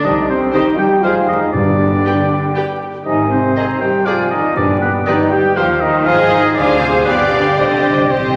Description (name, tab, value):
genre	quick classical-period movement for symphony orchestra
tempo	119 BPM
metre	3/4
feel	straight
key	C minor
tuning	A4 = 440 Hz
part	dark clarinet	second line	0.0-8.4 s	B4 to D5	-28 LUFS	equal	none
part	hollow concert flute	second line	0.0-8.4 s	F5 to Bb5	-26 LUFS	equal	none
part	rich chamber violin section	second line	0.0-8.4 s	B4 to D5	-25 LUFS	equal	none
part	warm oboe	second line	0.0-8.4 s	B4 to G5	-22 LUFS	equal	none
part	mellow bassoon	accompaniment	0.0-8.4 s	C3 to Ab3	-24 LUFS	equal	none
part	warm French horn section	sustained chords	0.0-8.4 s	B3 to G4	-20 LUFS	equal	none
part	dark chamber cello section	bass	0.0-8.4 s	B2 to G3	-26 LUFS	equal	none
part	rich studio double bass section	bass	0.0-8.4 s	F1 to Eb2	-29 LUFS	equal	none
part	rich chamber violin section	melody	0.5-8.4 s	C5 to G5	-28 LUFS	equal	none
part	rich chamber viola section	accompaniment	0.5-8.3 s	G4 to Ab4	-24 LUFS	equal	none
part	timpani	percussion	1.5-2.3, 4.6-5.3, 7.6-8.3 s	G2 to C3	-25 LUFS	equal	none
room	wet concert hall reverb, RT60 1.8 s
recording	vinyl crackle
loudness	-14 LUFS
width	mono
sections	0.0-8.4 A section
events	timpani fill 7.6-8.4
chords	0.0 Cm; 1.0 Fm; 1.5 G; 3.1 Ab; 4.1 Ddim/F; 4.6 G; 5.6 Cm/Eb; 6.1 Ab; 6.6 Dm7b5; 7.1 G7; 7.6 Cm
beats	| 0.04 0.53 1.03 | 1.54 2.05 2.56 | 3.06 3.57 4.07 | 4.57 5.07 5.56 | 6.05 6.55 7.06 | 7.58 8.10